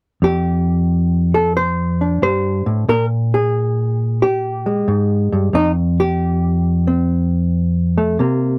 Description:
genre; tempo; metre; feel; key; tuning
solo jazz; 90 BPM; 4/4; swing 67% on 8ths; unclear; A4 = 435 Hz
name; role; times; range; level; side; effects
hollow-body jazz guitar; solo; 0.2-8.6 s; F2 to C5; -17 LUFS; equal; none
room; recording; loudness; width
light reverb; dry, close 1970s-style studio recording; -17 LUFS; mono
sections
0.2-8.6 A section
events
none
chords
0.2 F69; 2.9 Gm; 5.5 Fsus2

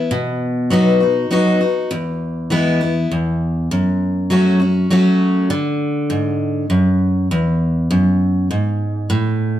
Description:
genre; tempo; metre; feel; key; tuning
country; 100 BPM; 3/4; straight; unclear; A4 = 439 Hz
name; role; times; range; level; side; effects
picked steel-string acoustic guitar; solo; 0.0-9.6 s; E2 to F#4; -15 LUFS; equal; none
room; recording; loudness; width
wet large studio reverb, RT60 1.0 s; dark, warm production; -15 LUFS; side -12 dB against mid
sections
0.0-9.6 A section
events
none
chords
0.1 B; 1.9 E; 3.7 F#m; 5.5 D; 7.3 E

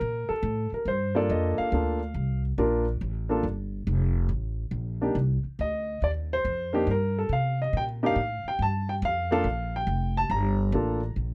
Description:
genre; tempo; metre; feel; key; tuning
jazz; 140 BPM; 4/4; swing 66% on 8ths; G minor; A4 = 440 Hz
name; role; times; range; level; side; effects
warm grand piano; melody; 0.0-11.1 s; Bb3 to Bb5; -29 LUFS; equal; none
upright bass; bass; 0.0-11.3 s; F1 to C3; -30 LUFS; equal; none
room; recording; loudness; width
little or no reverb; dry, close 1970s-style studio recording; -27 LUFS; mono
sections
0.0-11.3 A section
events
none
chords
0.0 Gm7; 5.2 Cm7; 8.6 Gm7

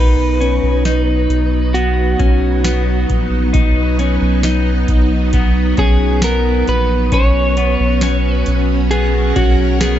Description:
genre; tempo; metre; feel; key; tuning
dream pop; 67 BPM; 4/4; straight; B major; A4 = 440 Hz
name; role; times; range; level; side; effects
electric slide guitar; melody; 0.0-10.0 s; F#4 to C#5; -20 LUFS; right 2 dB; tape echo
string machine, violins; sustained chords; 0.0-10.0 s; F#3 to A#4; -20 LUFS; equal; ensemble chorus
clean electric guitar; arpeggios; 0.0-10.0 s; B3 to D#4; -21 LUFS; left 4 dB; wide subtle chorus, tape echo
round analog bass; bass; 0.0-10.0 s; A#1 to B1; -16 LUFS; equal; none
booming analog drum machine; drums; 0.4-10.0 s; hi-hat, kick drum, snare drum; -15 LUFS; equal; none
backwards swelling texture; texture; 8.5-9.4 s; F#5; -32 LUFS; right 2 dB; built-in reverb, tape echo
room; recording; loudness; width
light reverb, digital ambience; nothing above 7.8 kHz; -12 LUFS; side -11 dB against mid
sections
0.0-10.0 A section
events
none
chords
0.0 B; 7.1 C#7sus4/B

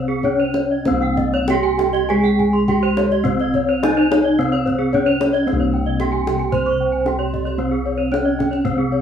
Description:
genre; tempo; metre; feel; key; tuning
Balinese gamelan; 96-113 BPM; 4/4; straight; C pelog; A4 = 440 Hz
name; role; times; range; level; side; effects
gamelan-type bronze metallophone; melody; 0.0-9.0 s; C4 to C5; -19 LUFS; right 2 dB; none
gamelan-type bronze metallophone; accompaniment; 0.0-9.0 s; C3 to C4; -25 LUFS; equal; none
gamelan-type bronze metallophone; arpeggios; 0.0-9.0 s; C5 to C6; -24 LUFS; left 5 dB; none
gamelan-type bossed gongs; bass; 0.0-9.0 s; C2 to Db4+20c; -24 LUFS; left 2 dB; none
gamelan-type bronze metallophone; arpeggios; 0.1-8.9 s; Ab4-20c to Db6+20c; -27 LUFS; right 3 dB; none
kendang; percussion; 0.2-8.8 s; none; -28 LUFS; left 1 dB; none
room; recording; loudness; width
moderate studio reverb, RT60 0.5 s; band playing live in one room; -16 LUFS; side -8 dB against mid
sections
0.0-5.5 A section; 5.5-9.0 B section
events
none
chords
none

